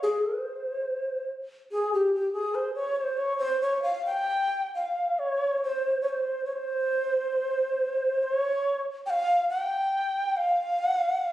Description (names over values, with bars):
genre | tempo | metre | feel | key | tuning
japanese traditional | 65-72 BPM | 2/4 | rubato | C miyako bushi | A4 = 441 Hz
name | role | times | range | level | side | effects
breathy bright long shakuhachi | solo | 0.0-11.3 s | G4 to G5 | -25 LUFS | equal | none
room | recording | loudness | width
moderate recital hall reverb, RT60 1.6 s | recorded on a phone in the room, studio reverb, compression | -25 LUFS | side -14 dB against mid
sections
0.0-5.2 A section; 5.2-11.3 B section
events
none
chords
none